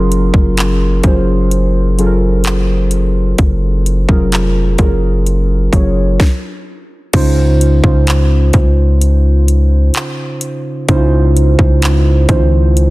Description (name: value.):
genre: contemporary R&B.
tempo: 64 BPM.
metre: 4/4.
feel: straight.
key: Gb lydian.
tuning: A4 = 441 Hz.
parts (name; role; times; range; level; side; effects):
muted felt-like synth keys; accompaniment; 0.0-12.9 s; Db3 to C6; -15 LUFS; right 1 dB; chorus.
long sustained 808-style bass; bass; 0.0-12.9 s; F1 to Db2; -12 LUFS; equal; none.
trap drum kit; drums; 0.1-12.9 s; crash cymbal, handclaps, hi-hat, kick drum, snare drum; -14 LUFS; equal; none.
room: digital ambience.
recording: dense, heavily limited modern master.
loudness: -10 LUFS.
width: side -20 dB against mid.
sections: 0.0-7.1 A section; 7.1-12.9 B section.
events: stop 6.2-7.1.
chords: 0.0 Gbmaj9; 7.1 Dbmaj9.